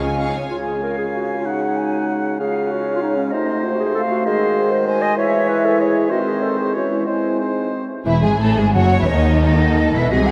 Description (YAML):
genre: classical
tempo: 171-195 BPM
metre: 3/4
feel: straight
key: Db major, C# minor from 4.3 s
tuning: A4 = 440 Hz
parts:
  - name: warm symphonic violin section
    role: melody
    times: 0.0-0.5, 8.1-10.3 s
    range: D#4 to Db6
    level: -28 LUFS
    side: equal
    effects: none
  - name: clear oboe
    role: second line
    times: 0.0-7.9 s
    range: B#4 to Ab5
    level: -32 LUFS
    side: equal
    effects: none
  - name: dark clarinet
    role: second line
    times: 0.0-7.7 s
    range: Db4 to D#5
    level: -25 LUFS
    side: equal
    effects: none
  - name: flute section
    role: second line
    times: 0.0-10.3 s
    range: B#4 to A5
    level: -26 LUFS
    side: equal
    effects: none
  - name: rich symphonic violin section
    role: second line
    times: 0.0-0.5, 8.1-10.3 s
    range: Ab4 to Ab5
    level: -31 LUFS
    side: equal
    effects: none
  - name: clear bassoon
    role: accompaniment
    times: 0.0-7.9 s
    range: C3 to G#3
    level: -28 LUFS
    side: equal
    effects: none
  - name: rich symphonic viola section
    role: accompaniment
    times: 0.0-0.2, 8.1-10.3 s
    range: D#3 to F#4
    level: -28 LUFS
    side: equal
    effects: none
  - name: dark French horn section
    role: sustained chords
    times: 0.0-10.3 s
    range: D#3 to Gb4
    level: -26 LUFS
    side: equal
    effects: none
  - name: clear symphonic double bass section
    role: bass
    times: 0.0-0.3, 8.1-10.3 s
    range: E1 to D#2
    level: -22 LUFS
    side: equal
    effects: none
  - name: warm studio cello section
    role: bass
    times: 0.0-0.3, 8.1-10.3 s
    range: D#2 to Db3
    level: -24 LUFS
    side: equal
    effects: none
room: wet cathedral reverb, RT60 5.4 s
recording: in a vast, echoing space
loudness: -18 LUFS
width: mono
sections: 0.5-8.1 A section; 8.1-10.3 B section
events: none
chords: 0.0 Db; 1.5 Ab5/Db; 2.4 Db; 3.3 Cdim7; 4.3 G#7/D#; 5.2 C#m/E; 6.1 G#/D#; 6.7 C#m/E; 7.1 G#; 8.1 C#m/E; 9.1 Esus4